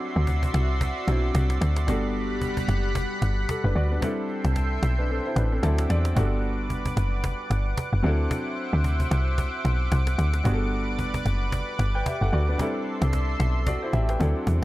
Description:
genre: amapiano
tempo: 112 BPM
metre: 4/4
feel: swing 58% on 16ths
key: G major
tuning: A4 = 440 Hz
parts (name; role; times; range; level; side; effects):
- warm concert grand piano; accompaniment; 0.0-14.6 s; F#3 to A5; -30 LUFS; equal; none
- lush unison pad; sustained chords; 0.0-14.6 s; G3 to D6; -32 LUFS; equal; chorus
- cajon; drums; 0.0-14.6 s; none; -31 LUFS; equal; none
- woody log drum bass; bass; 0.2-14.6 s; F#1 to E2; -23 LUFS; equal; none
room: small room reverb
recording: dry, gritty hardware recording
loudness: -22 LUFS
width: side -17 dB against mid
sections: 0.0-14.6 A section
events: kick muted 5.1-6.2; grand piano fill 5.4-6.2; drum fill 13.7-14.6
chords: 0.0 D9; 1.9 Gmaj7; 4.0 C6; 5.6 D9; 6.2 Gmaj7; 8.0 D9; 10.5 Gmaj7; 12.6 C6

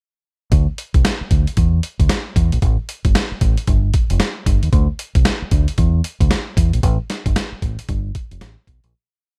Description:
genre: R&B, new jack swing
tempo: 114 BPM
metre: 4/4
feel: swing 61% on 16ths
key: unclear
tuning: A4 = 440 Hz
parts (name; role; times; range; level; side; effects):
- deep dub fingered electric bass; bass; 0.5-8.9 s; F1 to E2; -20 LUFS; equal; none
- boom bap sampler-style drum kit; drums; 0.5-8.9 s; hi-hat, kick drum, snare drum; -20 LUFS; equal; none
room: little or no reverb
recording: none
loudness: -18 LUFS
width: mono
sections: 0.5-8.9 breakdown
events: fade-out 6.8-8.9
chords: none

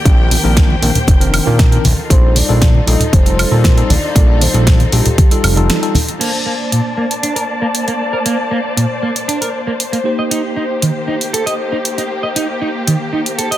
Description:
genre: nu-disco, nu disco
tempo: 117 BPM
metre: 4/4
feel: straight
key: Bb major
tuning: A4 = 441 Hz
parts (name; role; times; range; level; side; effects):
- tine electric piano; accompaniment; 0.0-13.6 s; Eb3 to A5; -22 LUFS; equal; medium stereo tremolo, dub echo
- dark symphonic string section; sustained chords; 0.0-13.6 s; Bb3 to A5; -21 LUFS; left 2 dB; sidechain pumping, low-pass filter
- fat analog bass; bass; 0.1-5.7 s; F1 to Bb2; -14 LUFS; equal; tube saturation
- electronic kick drum; drums; 0.1-5.3 s; none; -10 LUFS; equal; none
- pop drum kit; drums; 0.1-13.6 s; crash cymbal, hi-hat, snare drum, woodblock; -18 LUFS; right 1 dB; none
- congas; percussion; 0.3-6.2 s; none; -19 LUFS; left 1 dB; none
- soft octave-layered synth lead; melody; 2.1-5.7 s; G4 to Eb5; -23 LUFS; left 1 dB; chorus, tremolo, dub echo
- electric guitar at the edge of break-up; riff; 6.2-13.6 s; Bb2 to Eb5; -18 LUFS; right 2 dB; lush chorus, low-pass filter, dub echo
room: light reverb, digital ambience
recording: dense, heavily limited modern master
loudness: -11 LUFS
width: side -13 dB against mid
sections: 0.0-6.2 A section; 6.2-13.6 B section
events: break 5.7-6.2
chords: 0.0 Cm9; 1.8 F9; 6.2 Bbmaj9; 10.1 Eb6

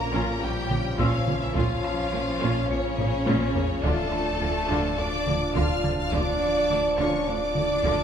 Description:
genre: cinematic, hybrid orchestral and electronic film score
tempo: 105 BPM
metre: 4/4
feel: straight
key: D harmonic minor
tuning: A4 = 439 Hz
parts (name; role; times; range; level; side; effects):
- rich studio violin section; melody; 0.0-8.0 s; Db5 to F6; -33 LUFS; left 4 dB; none
- warm symphonic violin section; second line; 0.0-8.0 s; Db4 to F5; -33 LUFS; left 3 dB; none
- mellow French horn section; sustained chords; 0.0-8.0 s; Db3 to F4; -30 LUFS; equal; none
- warm analog pad; sustained chords; 0.0-8.0 s; F3 to F5; -34 LUFS; right 1 dB; chorus
- warm trombone section; sustained chords; 0.0-8.0 s; D3 to D4; -33 LUFS; right 2 dB; none
- sub bass with octave; bass; 0.0-8.0 s; D1 to Bb1; -36 LUFS; equal; none
- felt-muted upright piano; texture; 0.0-8.0 s; Db5 to Db7; -40 LUFS; left 1 dB; none
- warm symphonic viola section; accompaniment; 0.1-8.0 s; F3 to F4; -32 LUFS; equal; none
- rich symphonic double bass section; bass; 0.1-7.9 s; Bb1 to D2; -32 LUFS; right 2 dB; none
- warm symphonic cello section; bass; 0.1-7.9 s; Bb2 to D3; -33 LUFS; right 2 dB; none
- solo taiko drums; drums; 0.7-8.0 s; none; -30 LUFS; equal; none
room: wet recital hall reverb, RT60 1.8 s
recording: recorded in a church or concert hall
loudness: -22 LUFS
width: side -8 dB against mid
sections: 0.0-8.0 A section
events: drum fill 3.0-3.8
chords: 0.0 Bbm; 3.8 Dm

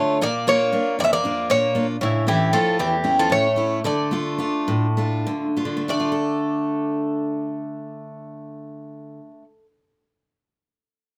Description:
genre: greek folk, Greek bouzouki band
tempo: 189-235 BPM (eighths)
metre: 7/8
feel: straight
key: D harmonic minor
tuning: A4 = 440 Hz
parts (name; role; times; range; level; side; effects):
- Greek bouzouki; melody; 0.0-9.4 s; E4 to E5; -24 LUFS; equal; none
- Greek bouzouki; second line; 0.0-9.4 s; C#3 to C#4; -30 LUFS; equal; none
- picked steel-string acoustic guitar; accompaniment; 0.0-9.7 s; E2 to A4; -26 LUFS; equal; none
room: wet small room ambience, RT60 0.5 s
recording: none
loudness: -22 LUFS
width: mono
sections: 0.0-5.9 A section; 5.9-10.3 B section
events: slowing down 2.0-5.9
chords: 0.2 Bb; 2.0 A; 3.8 Dm; 5.9 D5

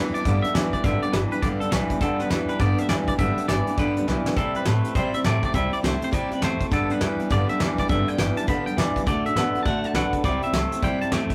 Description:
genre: rockabilly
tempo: 204 BPM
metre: 4/4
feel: swing 63% on 8ths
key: G major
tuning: A4 = 440 Hz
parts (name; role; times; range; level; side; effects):
- twangy electric guitar; melody; 0.0-11.3 s; A4 to B5; -31 LUFS; equal; none
- picked steel-string acoustic guitar; accompaniment; 0.0-11.3 s; G2 to A4; -32 LUFS; equal; none
- twangy electric guitar; riff; 0.0-11.3 s; G2 to B3; -29 LUFS; equal; spring reverb
- upright bass; bass; 0.0-11.3 s; G1 to D3; -30 LUFS; equal; none
- soft brush drum kit; drums; 0.1-11.3 s; hi-hat, kick drum, snare drum; -29 LUFS; equal; none
room: moderate small room reverb, RT60 0.5 s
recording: rough rehearsal-room recording, warm saturation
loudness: -23 LUFS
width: mono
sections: 0.0-11.3 A section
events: drum fill 4.1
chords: 0.0 G; 4.4 C; 6.7 G; 9.1 D; 10.2 C

